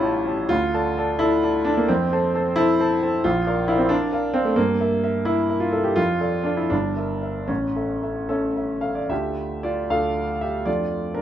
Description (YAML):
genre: classical, romantic character piece for solo piano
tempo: 73-92 BPM (dotted quarters)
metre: 6/8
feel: rubato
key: D minor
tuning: A4 = 440 Hz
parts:
  - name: warm grand piano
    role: solo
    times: 0.0-11.2 s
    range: G1 to A5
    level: -20 LUFS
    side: equal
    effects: none
room: moderate large studio reverb, RT60 1.1 s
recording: minimal, uncompressed stereo recording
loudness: -20 LUFS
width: side -10 dB against mid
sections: 0.0-9.1 A section; 9.1-11.2 B section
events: none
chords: 0.5 Dm; 1.9 F; 3.2 Bb; 4.6 Edim/G; 6.0 Dm/F; 6.7 Em7b5/G; 7.5 A; 9.1 Dm; 10.7 Dm/F